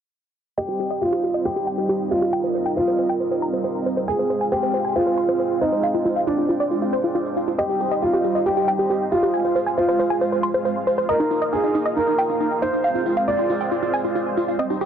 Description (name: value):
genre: uplifting trance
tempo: 137 BPM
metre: 4/4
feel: straight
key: C minor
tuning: A4 = 438 Hz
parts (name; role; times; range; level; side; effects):
- wide unison pluck; melody; 0.6-14.9 s; Eb4 to C6; -23 LUFS; equal; digital delay
- warm grand piano; second line; 0.6-14.5 s; D4 to D5; -22 LUFS; right 1 dB; digital delay
- filtered supersaw swell; sustained chords; 0.6-14.9 s; G3 to G5; -27 LUFS; right 1 dB; phaser, vintage 12-bit sampler grit
- tambourine; drums; 0.6-14.9 s; none; -55 LUFS; left 8 dB; overdrive
- wide unison pluck; arpeggios; 14.6-14.8 s; C4 to G4; -26 LUFS; right 2 dB; none
room: light reverb, digital ambience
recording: dense, heavily limited modern master, low-pass filter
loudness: -19 LUFS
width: side -8 dB against mid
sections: 0.6-14.9 A section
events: filter sweep on synth pluck 0.6-14.9; filter sweep 0.6-14.9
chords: 0.6 Cm; 4.1 Fm; 7.6 Cm; 9.3 Fm; 11.1 Ebsus2; 12.8 Fm